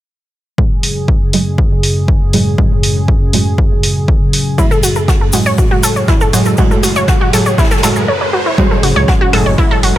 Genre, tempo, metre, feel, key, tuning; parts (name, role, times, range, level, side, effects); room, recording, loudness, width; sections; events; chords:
melodic techno; 120 BPM; 4/4; straight; F# minor; A4 = 440 Hz
warm analog pad; sustained chords; 0.6-10.0 s; F#2 to G#4; -18 LUFS; equal; chorus, sidechain pumping
synth brass stab; stabs; 0.6-10.0 s; A2 to G#3; -17 LUFS; right 2 dB; chorus, sidechain pumping, digital delay
electronic kick drum; drums; 0.6-9.7 s; -12 LUFS; equal
electronic hi-hat, congas and claves; drums; 0.8-9.9 s; -18 LUFS; equal; sidechain pumping on hats, sidechain pumping on perc
wide unison pluck; arpeggios; 4.6-10.0 s; E4 to C#5; -15 LUFS; equal; sidechain pumping, digital delay
jazz brush drum kit; drums; 4.6-10.0 s; hi-hat, ride cymbal, snare drum; -26 LUFS; right 1 dB; sidechain pumping on cymbals, high-pass filter on cymbals, sidechain pumping on hats, high-pass filter on hats, high-pass filter on snare, high-pass filter on room
tube shaker; percussion; 4.6-8.1 s; -22 LUFS; left 3 dB
riser; sound effects; 6.0-8.6 s; -22 LUFS; equal
dark detuned saw bass; bass; 8.8-10.0 s; F#1 to C#2; -14 LUFS; equal; sidechain pumping
studio ambience; -10 LUFS; side -14 dB against mid
0.6-8.6 A section; 8.6-10.0 B section
filter sweep on synth stab 0.6-8.6; riser 6.0-8.6; break 8.1-8.6
0.6 F#madd9